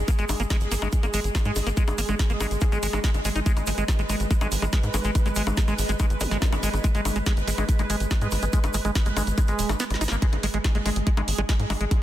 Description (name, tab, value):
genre	psychedelic trance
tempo	142 BPM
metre	4/4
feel	straight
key	G# minor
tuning	A4 = 440 Hz
part	pulsing gated texture	sustained chords	0.0-12.0 s	G#3 to B4	-32 LUFS	right 1 dB	chorus, built-in reverb, sidechain pumping
part	tight sequencer bass	bass	0.0-11.9 s	D#1 to G#2	-27 LUFS	equal	none
part	liquid acid bass	riff	0.1-11.8 s	G#3 to D#4	-30 LUFS	right 1 dB	chorus, auto-pan, cassette tape, sidechain pumping, tape echo
part	drum and bass drum kit	drums	0.1-12.0 s	bongos, hi-hat, snare drum	-31 LUFS	left 1 dB	none
part	electronic kick drum	drums	0.1-12.0 s	none	-22 LUFS	equal	none
part	tube shaker	percussion	0.1-10.2 s	none	-38 LUFS	right 4 dB	none
part	zap	sound effects	6.2-6.3 s	none	-36 LUFS	equal	none
room	little or no reverb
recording	dense, heavily limited modern master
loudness	-22 LUFS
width	side -13 dB against mid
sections	0.0-10.2 A section; 10.2-12.0 B section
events	break 9.8-10.2; drum fill 9.8-10.2; drop 10.2-12.0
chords	0.0 G#5